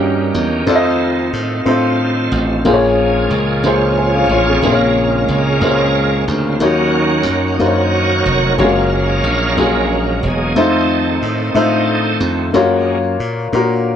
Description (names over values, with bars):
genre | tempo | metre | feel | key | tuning
slow gospel | 61 BPM (dotted quarters) | 6/8 | straight | Bb minor | A4 = 440 Hz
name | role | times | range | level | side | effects
clean electric guitar | second line | 0.0-0.5 s | G3 to Eb4 | -23 LUFS | right 9 dB | spring reverb
warm upright piano | accompaniment | 0.0-14.0 s | Bb2 to Ab5 | -15 LUFS | left 2 dB | none
bright tonewheel organ | sustained chords | 0.0-13.0 s | Db3 to F5 | -18 LUFS | right 3 dB | chorus vibrato, slow rotary speaker
glassy slap bass | bass | 0.0-14.0 s | E1 to Bb2 | -19 LUFS | equal | none
room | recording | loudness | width
moderate studio reverb, RT60 0.5 s | band playing live in one room | -12 LUFS | side -9 dB against mid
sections
0.0-4.6 A section; 4.6-14.0 A section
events
tonewheel organ solo 4.6-14.0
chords
0.0 Eb7; 0.7 F7; 2.7 Bbm7; 6.6 Ebm7; 8.6 Gbmaj7; 10.6 F7; 12.5 Gbmaj7